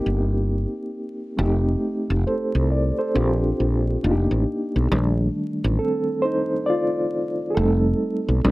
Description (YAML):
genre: R&B, neo-soul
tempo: 68 BPM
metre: 4/4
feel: swing 62% on 16ths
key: unclear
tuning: A4 = 441 Hz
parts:
  - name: mellow reed electric piano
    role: accompaniment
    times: 0.0-8.5 s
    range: Eb3 to D5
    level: -22 LUFS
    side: equal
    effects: fast tremolo
  - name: woody fretless electric bass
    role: bass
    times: 0.1-8.5 s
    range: F1 to C2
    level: -21 LUFS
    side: equal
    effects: none
room: light reverb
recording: dark, warm production, vinyl crackle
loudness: -20 LUFS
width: side -19 dB against mid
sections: 0.0-4.9 A section; 4.9-8.5 B section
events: reed electric piano solo 4.9-8.5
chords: 0.0 Abmaj9 (rootless); 1.4 F9; 3.1 Bb6; 4.0 F13sus4; 4.9 F13; 7.5 F7